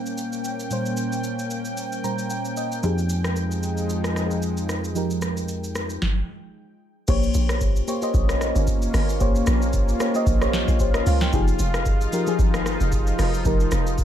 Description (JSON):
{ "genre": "amapiano", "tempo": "113 BPM", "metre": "4/4", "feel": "swing 55% on 16ths", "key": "Bb dorian", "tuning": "A4 = 442 Hz", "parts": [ { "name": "mellow FM electric piano", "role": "accompaniment", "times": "0.0-14.0 s", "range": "Bb2 to Bb5", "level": "-27 LUFS", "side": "left 1 dB", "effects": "chorus, phaser" }, { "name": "lush unison pad", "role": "sustained chords", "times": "0.0-14.0 s", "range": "F3 to G5", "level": "-28 LUFS", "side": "equal", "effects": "chorus, sidechain pumping" }, { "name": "booming analog drum machine", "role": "drums", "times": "0.1-14.0 s", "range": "crash cymbal, hi-hat, kick drum, rim click, shaker, snare drum", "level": "-25 LUFS", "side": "equal", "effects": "none" }, { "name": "plucky analog bass", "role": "bass", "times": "2.8-6.0 s", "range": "F2", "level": "-26 LUFS", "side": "equal", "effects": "none" }, { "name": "hollow log drum bass", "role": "bass", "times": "7.1-14.0 s", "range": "F1 to Db2", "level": "-23 LUFS", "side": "equal", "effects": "none" } ], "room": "little or no reverb", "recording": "none", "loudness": "-20 LUFS", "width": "side -10 dB against mid", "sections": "0.0-7.1 A section; 7.1-14.0 B section", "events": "FM electric piano fill 1.8-2.8; stop 6.0-7.1; drop 7.1-14.0", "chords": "0.0 Bbm69; 2.8 Fm9; 7.1 Bbm69; 11.3 Fm9" }